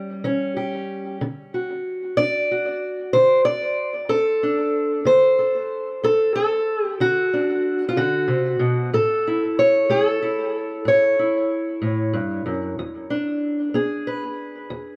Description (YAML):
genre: acoustic country blues, solo or duo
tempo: 62 BPM (dotted quarters)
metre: 12/8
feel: straight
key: A mixolydian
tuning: A4 = 440 Hz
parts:
  - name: fingerpicked steel-string acoustic guitar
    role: solo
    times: 0.0-15.0 s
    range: E2 to D5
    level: -21 LUFS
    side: equal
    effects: tape echo
room: moderate studio ambience, RT60 0.5 s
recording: none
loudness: -21 LUFS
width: mono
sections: 0.0-15.0 A section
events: none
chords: 0.0 A7 (rootless); 1.2 D7; 8.9 A; 12.8 E7